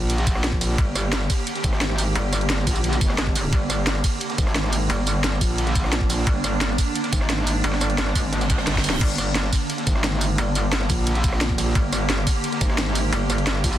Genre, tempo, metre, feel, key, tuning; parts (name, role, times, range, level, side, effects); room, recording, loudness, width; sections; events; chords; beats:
dark technical drum and bass; 175 BPM; 4/4; straight; G phrygian; A4 = 440 Hz
swarming drone; sustained chords; 0.0-13.8 s; D3 to G4; -27 LUFS; right 2 dB; built-in reverb, sidechain pumping
metallic wobble bass; bass; 0.0-13.8 s; G1 to Bb1; -23 LUFS; equal; distortion, chorus
crunchy breakbeat drum kit; drums; 0.1-13.7 s; hi-hat, snare drum; -35 LUFS; equal
drum and bass drum kit; drums; 0.1-13.8 s; crash cymbal, hi-hat, ride cymbal, rim click, snare drum, tambourine; -26 LUFS; right 1 dB
electronic kick drum; drums; 0.3-13.7 s; -22 LUFS; equal
metallic wobble bass; bass; 0.8-13.6 s; G1 to Ab1; -23 LUFS; equal; chorus, overdrive
reverse cymbal; sound effects; 8.5-9.0 s; -34 LUFS; right 4 dB
little or no reverb; dense, heavily limited modern master; -19 LUFS; side -12 dB against mid
0.0-13.8 A section
reverse cymbal 8.5-9.0; drum fill 8.7-9.0
0.0 Gm
0.10 0.44 | 0.78 1.13 1.47 1.81 | 2.15 2.50 2.84 3.18 | 3.53 3.87 4.21 4.55 | 4.90 5.24 5.58 5.93 | 6.27 6.61 6.96 7.30 | 7.64 7.98 8.33 8.67 | 9.01 9.36 9.70 10.04 | 10.38 10.73 11.07 11.41 | 11.76 12.10 12.44 12.78 | 13.13 13.47